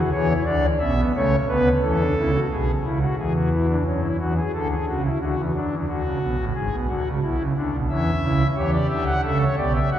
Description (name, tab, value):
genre	classical, baroque-style 3-part fugue for pipe organ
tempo	89 BPM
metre	4/4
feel	straight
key	unclear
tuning	A4 = 441 Hz
part	pipe organ, foundations	solo	0.0-10.0 s	G#1 to F#5	-20 LUFS	equal	none
room	wet church reverb, RT60 3.1 s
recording	recorded in a church or concert hall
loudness	-20 LUFS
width	side -10 dB against mid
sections	0.0-2.5 A section; 2.5-10.0 B section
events	none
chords	0.0 E7; 1.1 A/C#; 2.5 C#m7/B; 3.9 F#m; 5.2 Bm7/D; 6.5 E7/G#; 7.9 C#dim